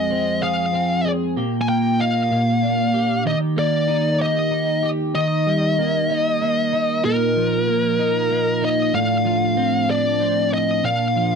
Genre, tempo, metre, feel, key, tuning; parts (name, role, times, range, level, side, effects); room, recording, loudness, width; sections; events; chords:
pop; 63 BPM (dotted quarters); 6/8; straight; Eb major; A4 = 440 Hz
high-gain lead guitar; melody; 0.0-11.4 s; Bb4 to Ab5; -20 LUFS; left 1 dB; distortion
twelve-string electric guitar; accompaniment; 0.0-11.4 s; F2 to Ab4; -20 LUFS; right 1 dB; double-tracked left and right
light reverb; dry, close 1970s-style studio recording; -17 LUFS; side -6 dB against mid
0.0-5.2 A section; 5.2-11.4 A section
0.0 Fm; 1.4 Eb/Bb; 2.3 Bb6; 3.3 Eb; 7.0 Bbsus4; 8.9 F6/A; 10.8 Bb